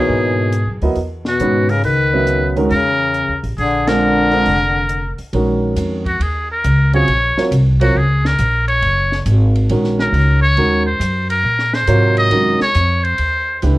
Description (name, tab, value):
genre	modal jazz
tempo	137 BPM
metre	4/4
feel	swing 67% on 8ths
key	Eb dorian from 5.3 s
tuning	A4 = 440 Hz
part	trumpet with metal mute	melody	0.0-13.6 s	Gb4 to Eb5	-17 LUFS	equal	none
part	breathy tenor saxophone	second line	0.0-5.2 s	Cb3 to Eb3	-20 LUFS	left 4 dB	none
part	clear baby grand piano	accompaniment	0.0-13.8 s	C3 to Fb5	-18 LUFS	right 2 dB	none
part	upright bass	bass	0.1-13.8 s	F1 to Bb2	-17 LUFS	equal	none
part	compact cocktail drum kit	drums	0.5-13.8 s	hi-hat, kick drum, ride cymbal, snare drum	-30 LUFS	equal	none
room	light reverb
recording	worn, warbling old tape, cassette tape, warbly pitch drift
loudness	-13 LUFS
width	side -18 dB against mid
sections	0.0-5.3 A section; 5.3-13.8 B section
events	band accent 3.8; muted trumpet solo 5.3-13.8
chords	0.0 Dbm11; 3.6 Bb7; 5.3 Ebm9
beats	| 0.09 0.53 0.96 1.40 | 1.84 2.27 2.71 3.15 | 3.58 4.02 4.46 4.89 | 5.33 5.77 6.20 6.64 | 7.08 7.51 7.95 8.39 | 8.82 9.26 9.70 10.13 | 10.57 11.01 11.44 11.88 | 12.32 12.75 13.19 13.62